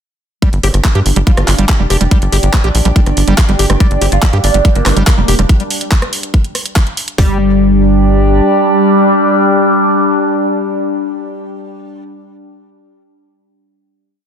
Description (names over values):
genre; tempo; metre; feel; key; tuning
psychedelic trance; 142 BPM; 4/4; straight; unclear; A4 = 440 Hz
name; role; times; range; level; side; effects
overdriven acid bass; riff; 0.4-7.4 s; G3 to G4; -19 LUFS; moving between left 6 dB and right 4 dB; auto-pan, sidechain pumping, ping-pong delay
garage drum kit; drums; 0.4-7.3 s; hi-hat, kick drum; -10 LUFS; equal; overdrive, small room ambience
garage drum kit; drums; 0.4-7.2 s; handclaps, hi-hat, rim click; -18 LUFS; right 1 dB; overdrive, small room ambience
warbly tape-like pad; texture; 0.4-11.3 s; D4 to G5; -19 LUFS; right 2 dB; chorus, built-in reverb, sidechain pumping
tight sequencer bass; bass; 0.5-8.4 s; F1 to G2; -12 LUFS; equal; tube saturation
formant-sweep wobble bass; second line; 0.6-5.0 s; C4 to F4; -30 LUFS; right 4 dB; none
oud; melody; 3.8-12.0 s; G3 to F4; -16 LUFS; equal; phaser, sidechain pumping, digital delay
overtone-sweeping drone; sustained chords; 4.5-11.4 s; G3 to D4; -14 LUFS; left 1 dB; chorus, built-in reverb, sidechain pumping
room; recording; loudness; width
light reverb, digital ambience; dense, heavily limited modern master; -9 LUFS; side -8 dB against mid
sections
0.4-7.2 drop; 7.2-10.6 final chord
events
drop 0.4-7.2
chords
0.4 G5